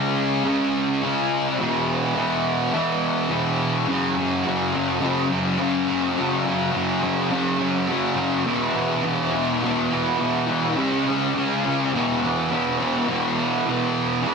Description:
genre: rock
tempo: 104 BPM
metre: 4/4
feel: straight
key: E major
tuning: A4 = 435 Hz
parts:
  - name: fuzz guitar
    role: solo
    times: 0.0-14.3 s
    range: E2 to C#4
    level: -20 LUFS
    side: equal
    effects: distortion, wide subtle chorus, tape echo
room: moderate lush hall reverb, RT60 2.2 s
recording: dense, heavily limited modern master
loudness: -20 LUFS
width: side -5 dB against mid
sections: 0.0-3.9 A section; 3.9-13.1 B section; 13.1-14.3 A section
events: none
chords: 0.0 C#5; 1.6 E5; 3.9 F#5; 8.5 E5; 10.8 C#5; 11.9 E5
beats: 0.44 1.02 | 1.59 2.16 2.73 3.30 | 3.87 4.45 5.02 5.59 | 6.16 6.74 7.31 7.88 | 8.46 9.04 9.61 10.19 | 10.77 11.34 11.92 12.50 | 13.08 13.66 14.23

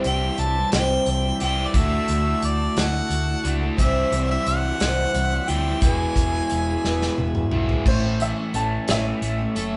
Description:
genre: folk rock and heartland rock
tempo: 59 BPM (dotted quarters)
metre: 6/8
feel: straight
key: unclear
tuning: A4 = 440 Hz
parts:
  - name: picked steel-string acoustic guitar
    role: accompaniment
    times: 0.0-9.8 s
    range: A2 to C#5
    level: -31 LUFS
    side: equal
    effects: none
  - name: bright tonewheel organ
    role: sustained chords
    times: 0.0-9.8 s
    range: A3 to E6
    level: -39 LUFS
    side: equal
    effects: slow rotary speaker
  - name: crunchy overdriven guitar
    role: riff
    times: 0.0-9.8 s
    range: E2 to A4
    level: -30 LUFS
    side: equal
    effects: none
  - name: hollow-body short-scale fingered electric bass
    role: bass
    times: 0.0-9.8 s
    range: E1 to D2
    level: -28 LUFS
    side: equal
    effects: none
  - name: unplugged drum kit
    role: drums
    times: 0.0-9.7 s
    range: crash cymbal, hi-hat, kick drum, snare drum, toms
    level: -27 LUFS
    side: equal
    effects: none
  - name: clear harmonica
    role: melody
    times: 0.1-7.2 s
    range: D5 to A5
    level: -28 LUFS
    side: equal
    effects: none
  - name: bright upright piano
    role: second line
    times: 7.9-9.8 s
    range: C5 to A5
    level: -31 LUFS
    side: equal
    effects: none
room: moderate studio reverb, RT60 1.0 s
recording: band playing live in one room, nothing above 10.9 kHz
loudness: -22 LUFS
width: mono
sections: 0.0-7.9 A section; 7.9-9.8 B section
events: drum fill 6.8-7.9; upright piano solo 7.9-9.8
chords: 0.0 C; 1.8 Dadd9; 3.8 C; 5.8 E; 7.9 A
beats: 0.73 | 1.75 2.77 | 3.79 4.81 | 5.83 6.85 | 7.87 8.88

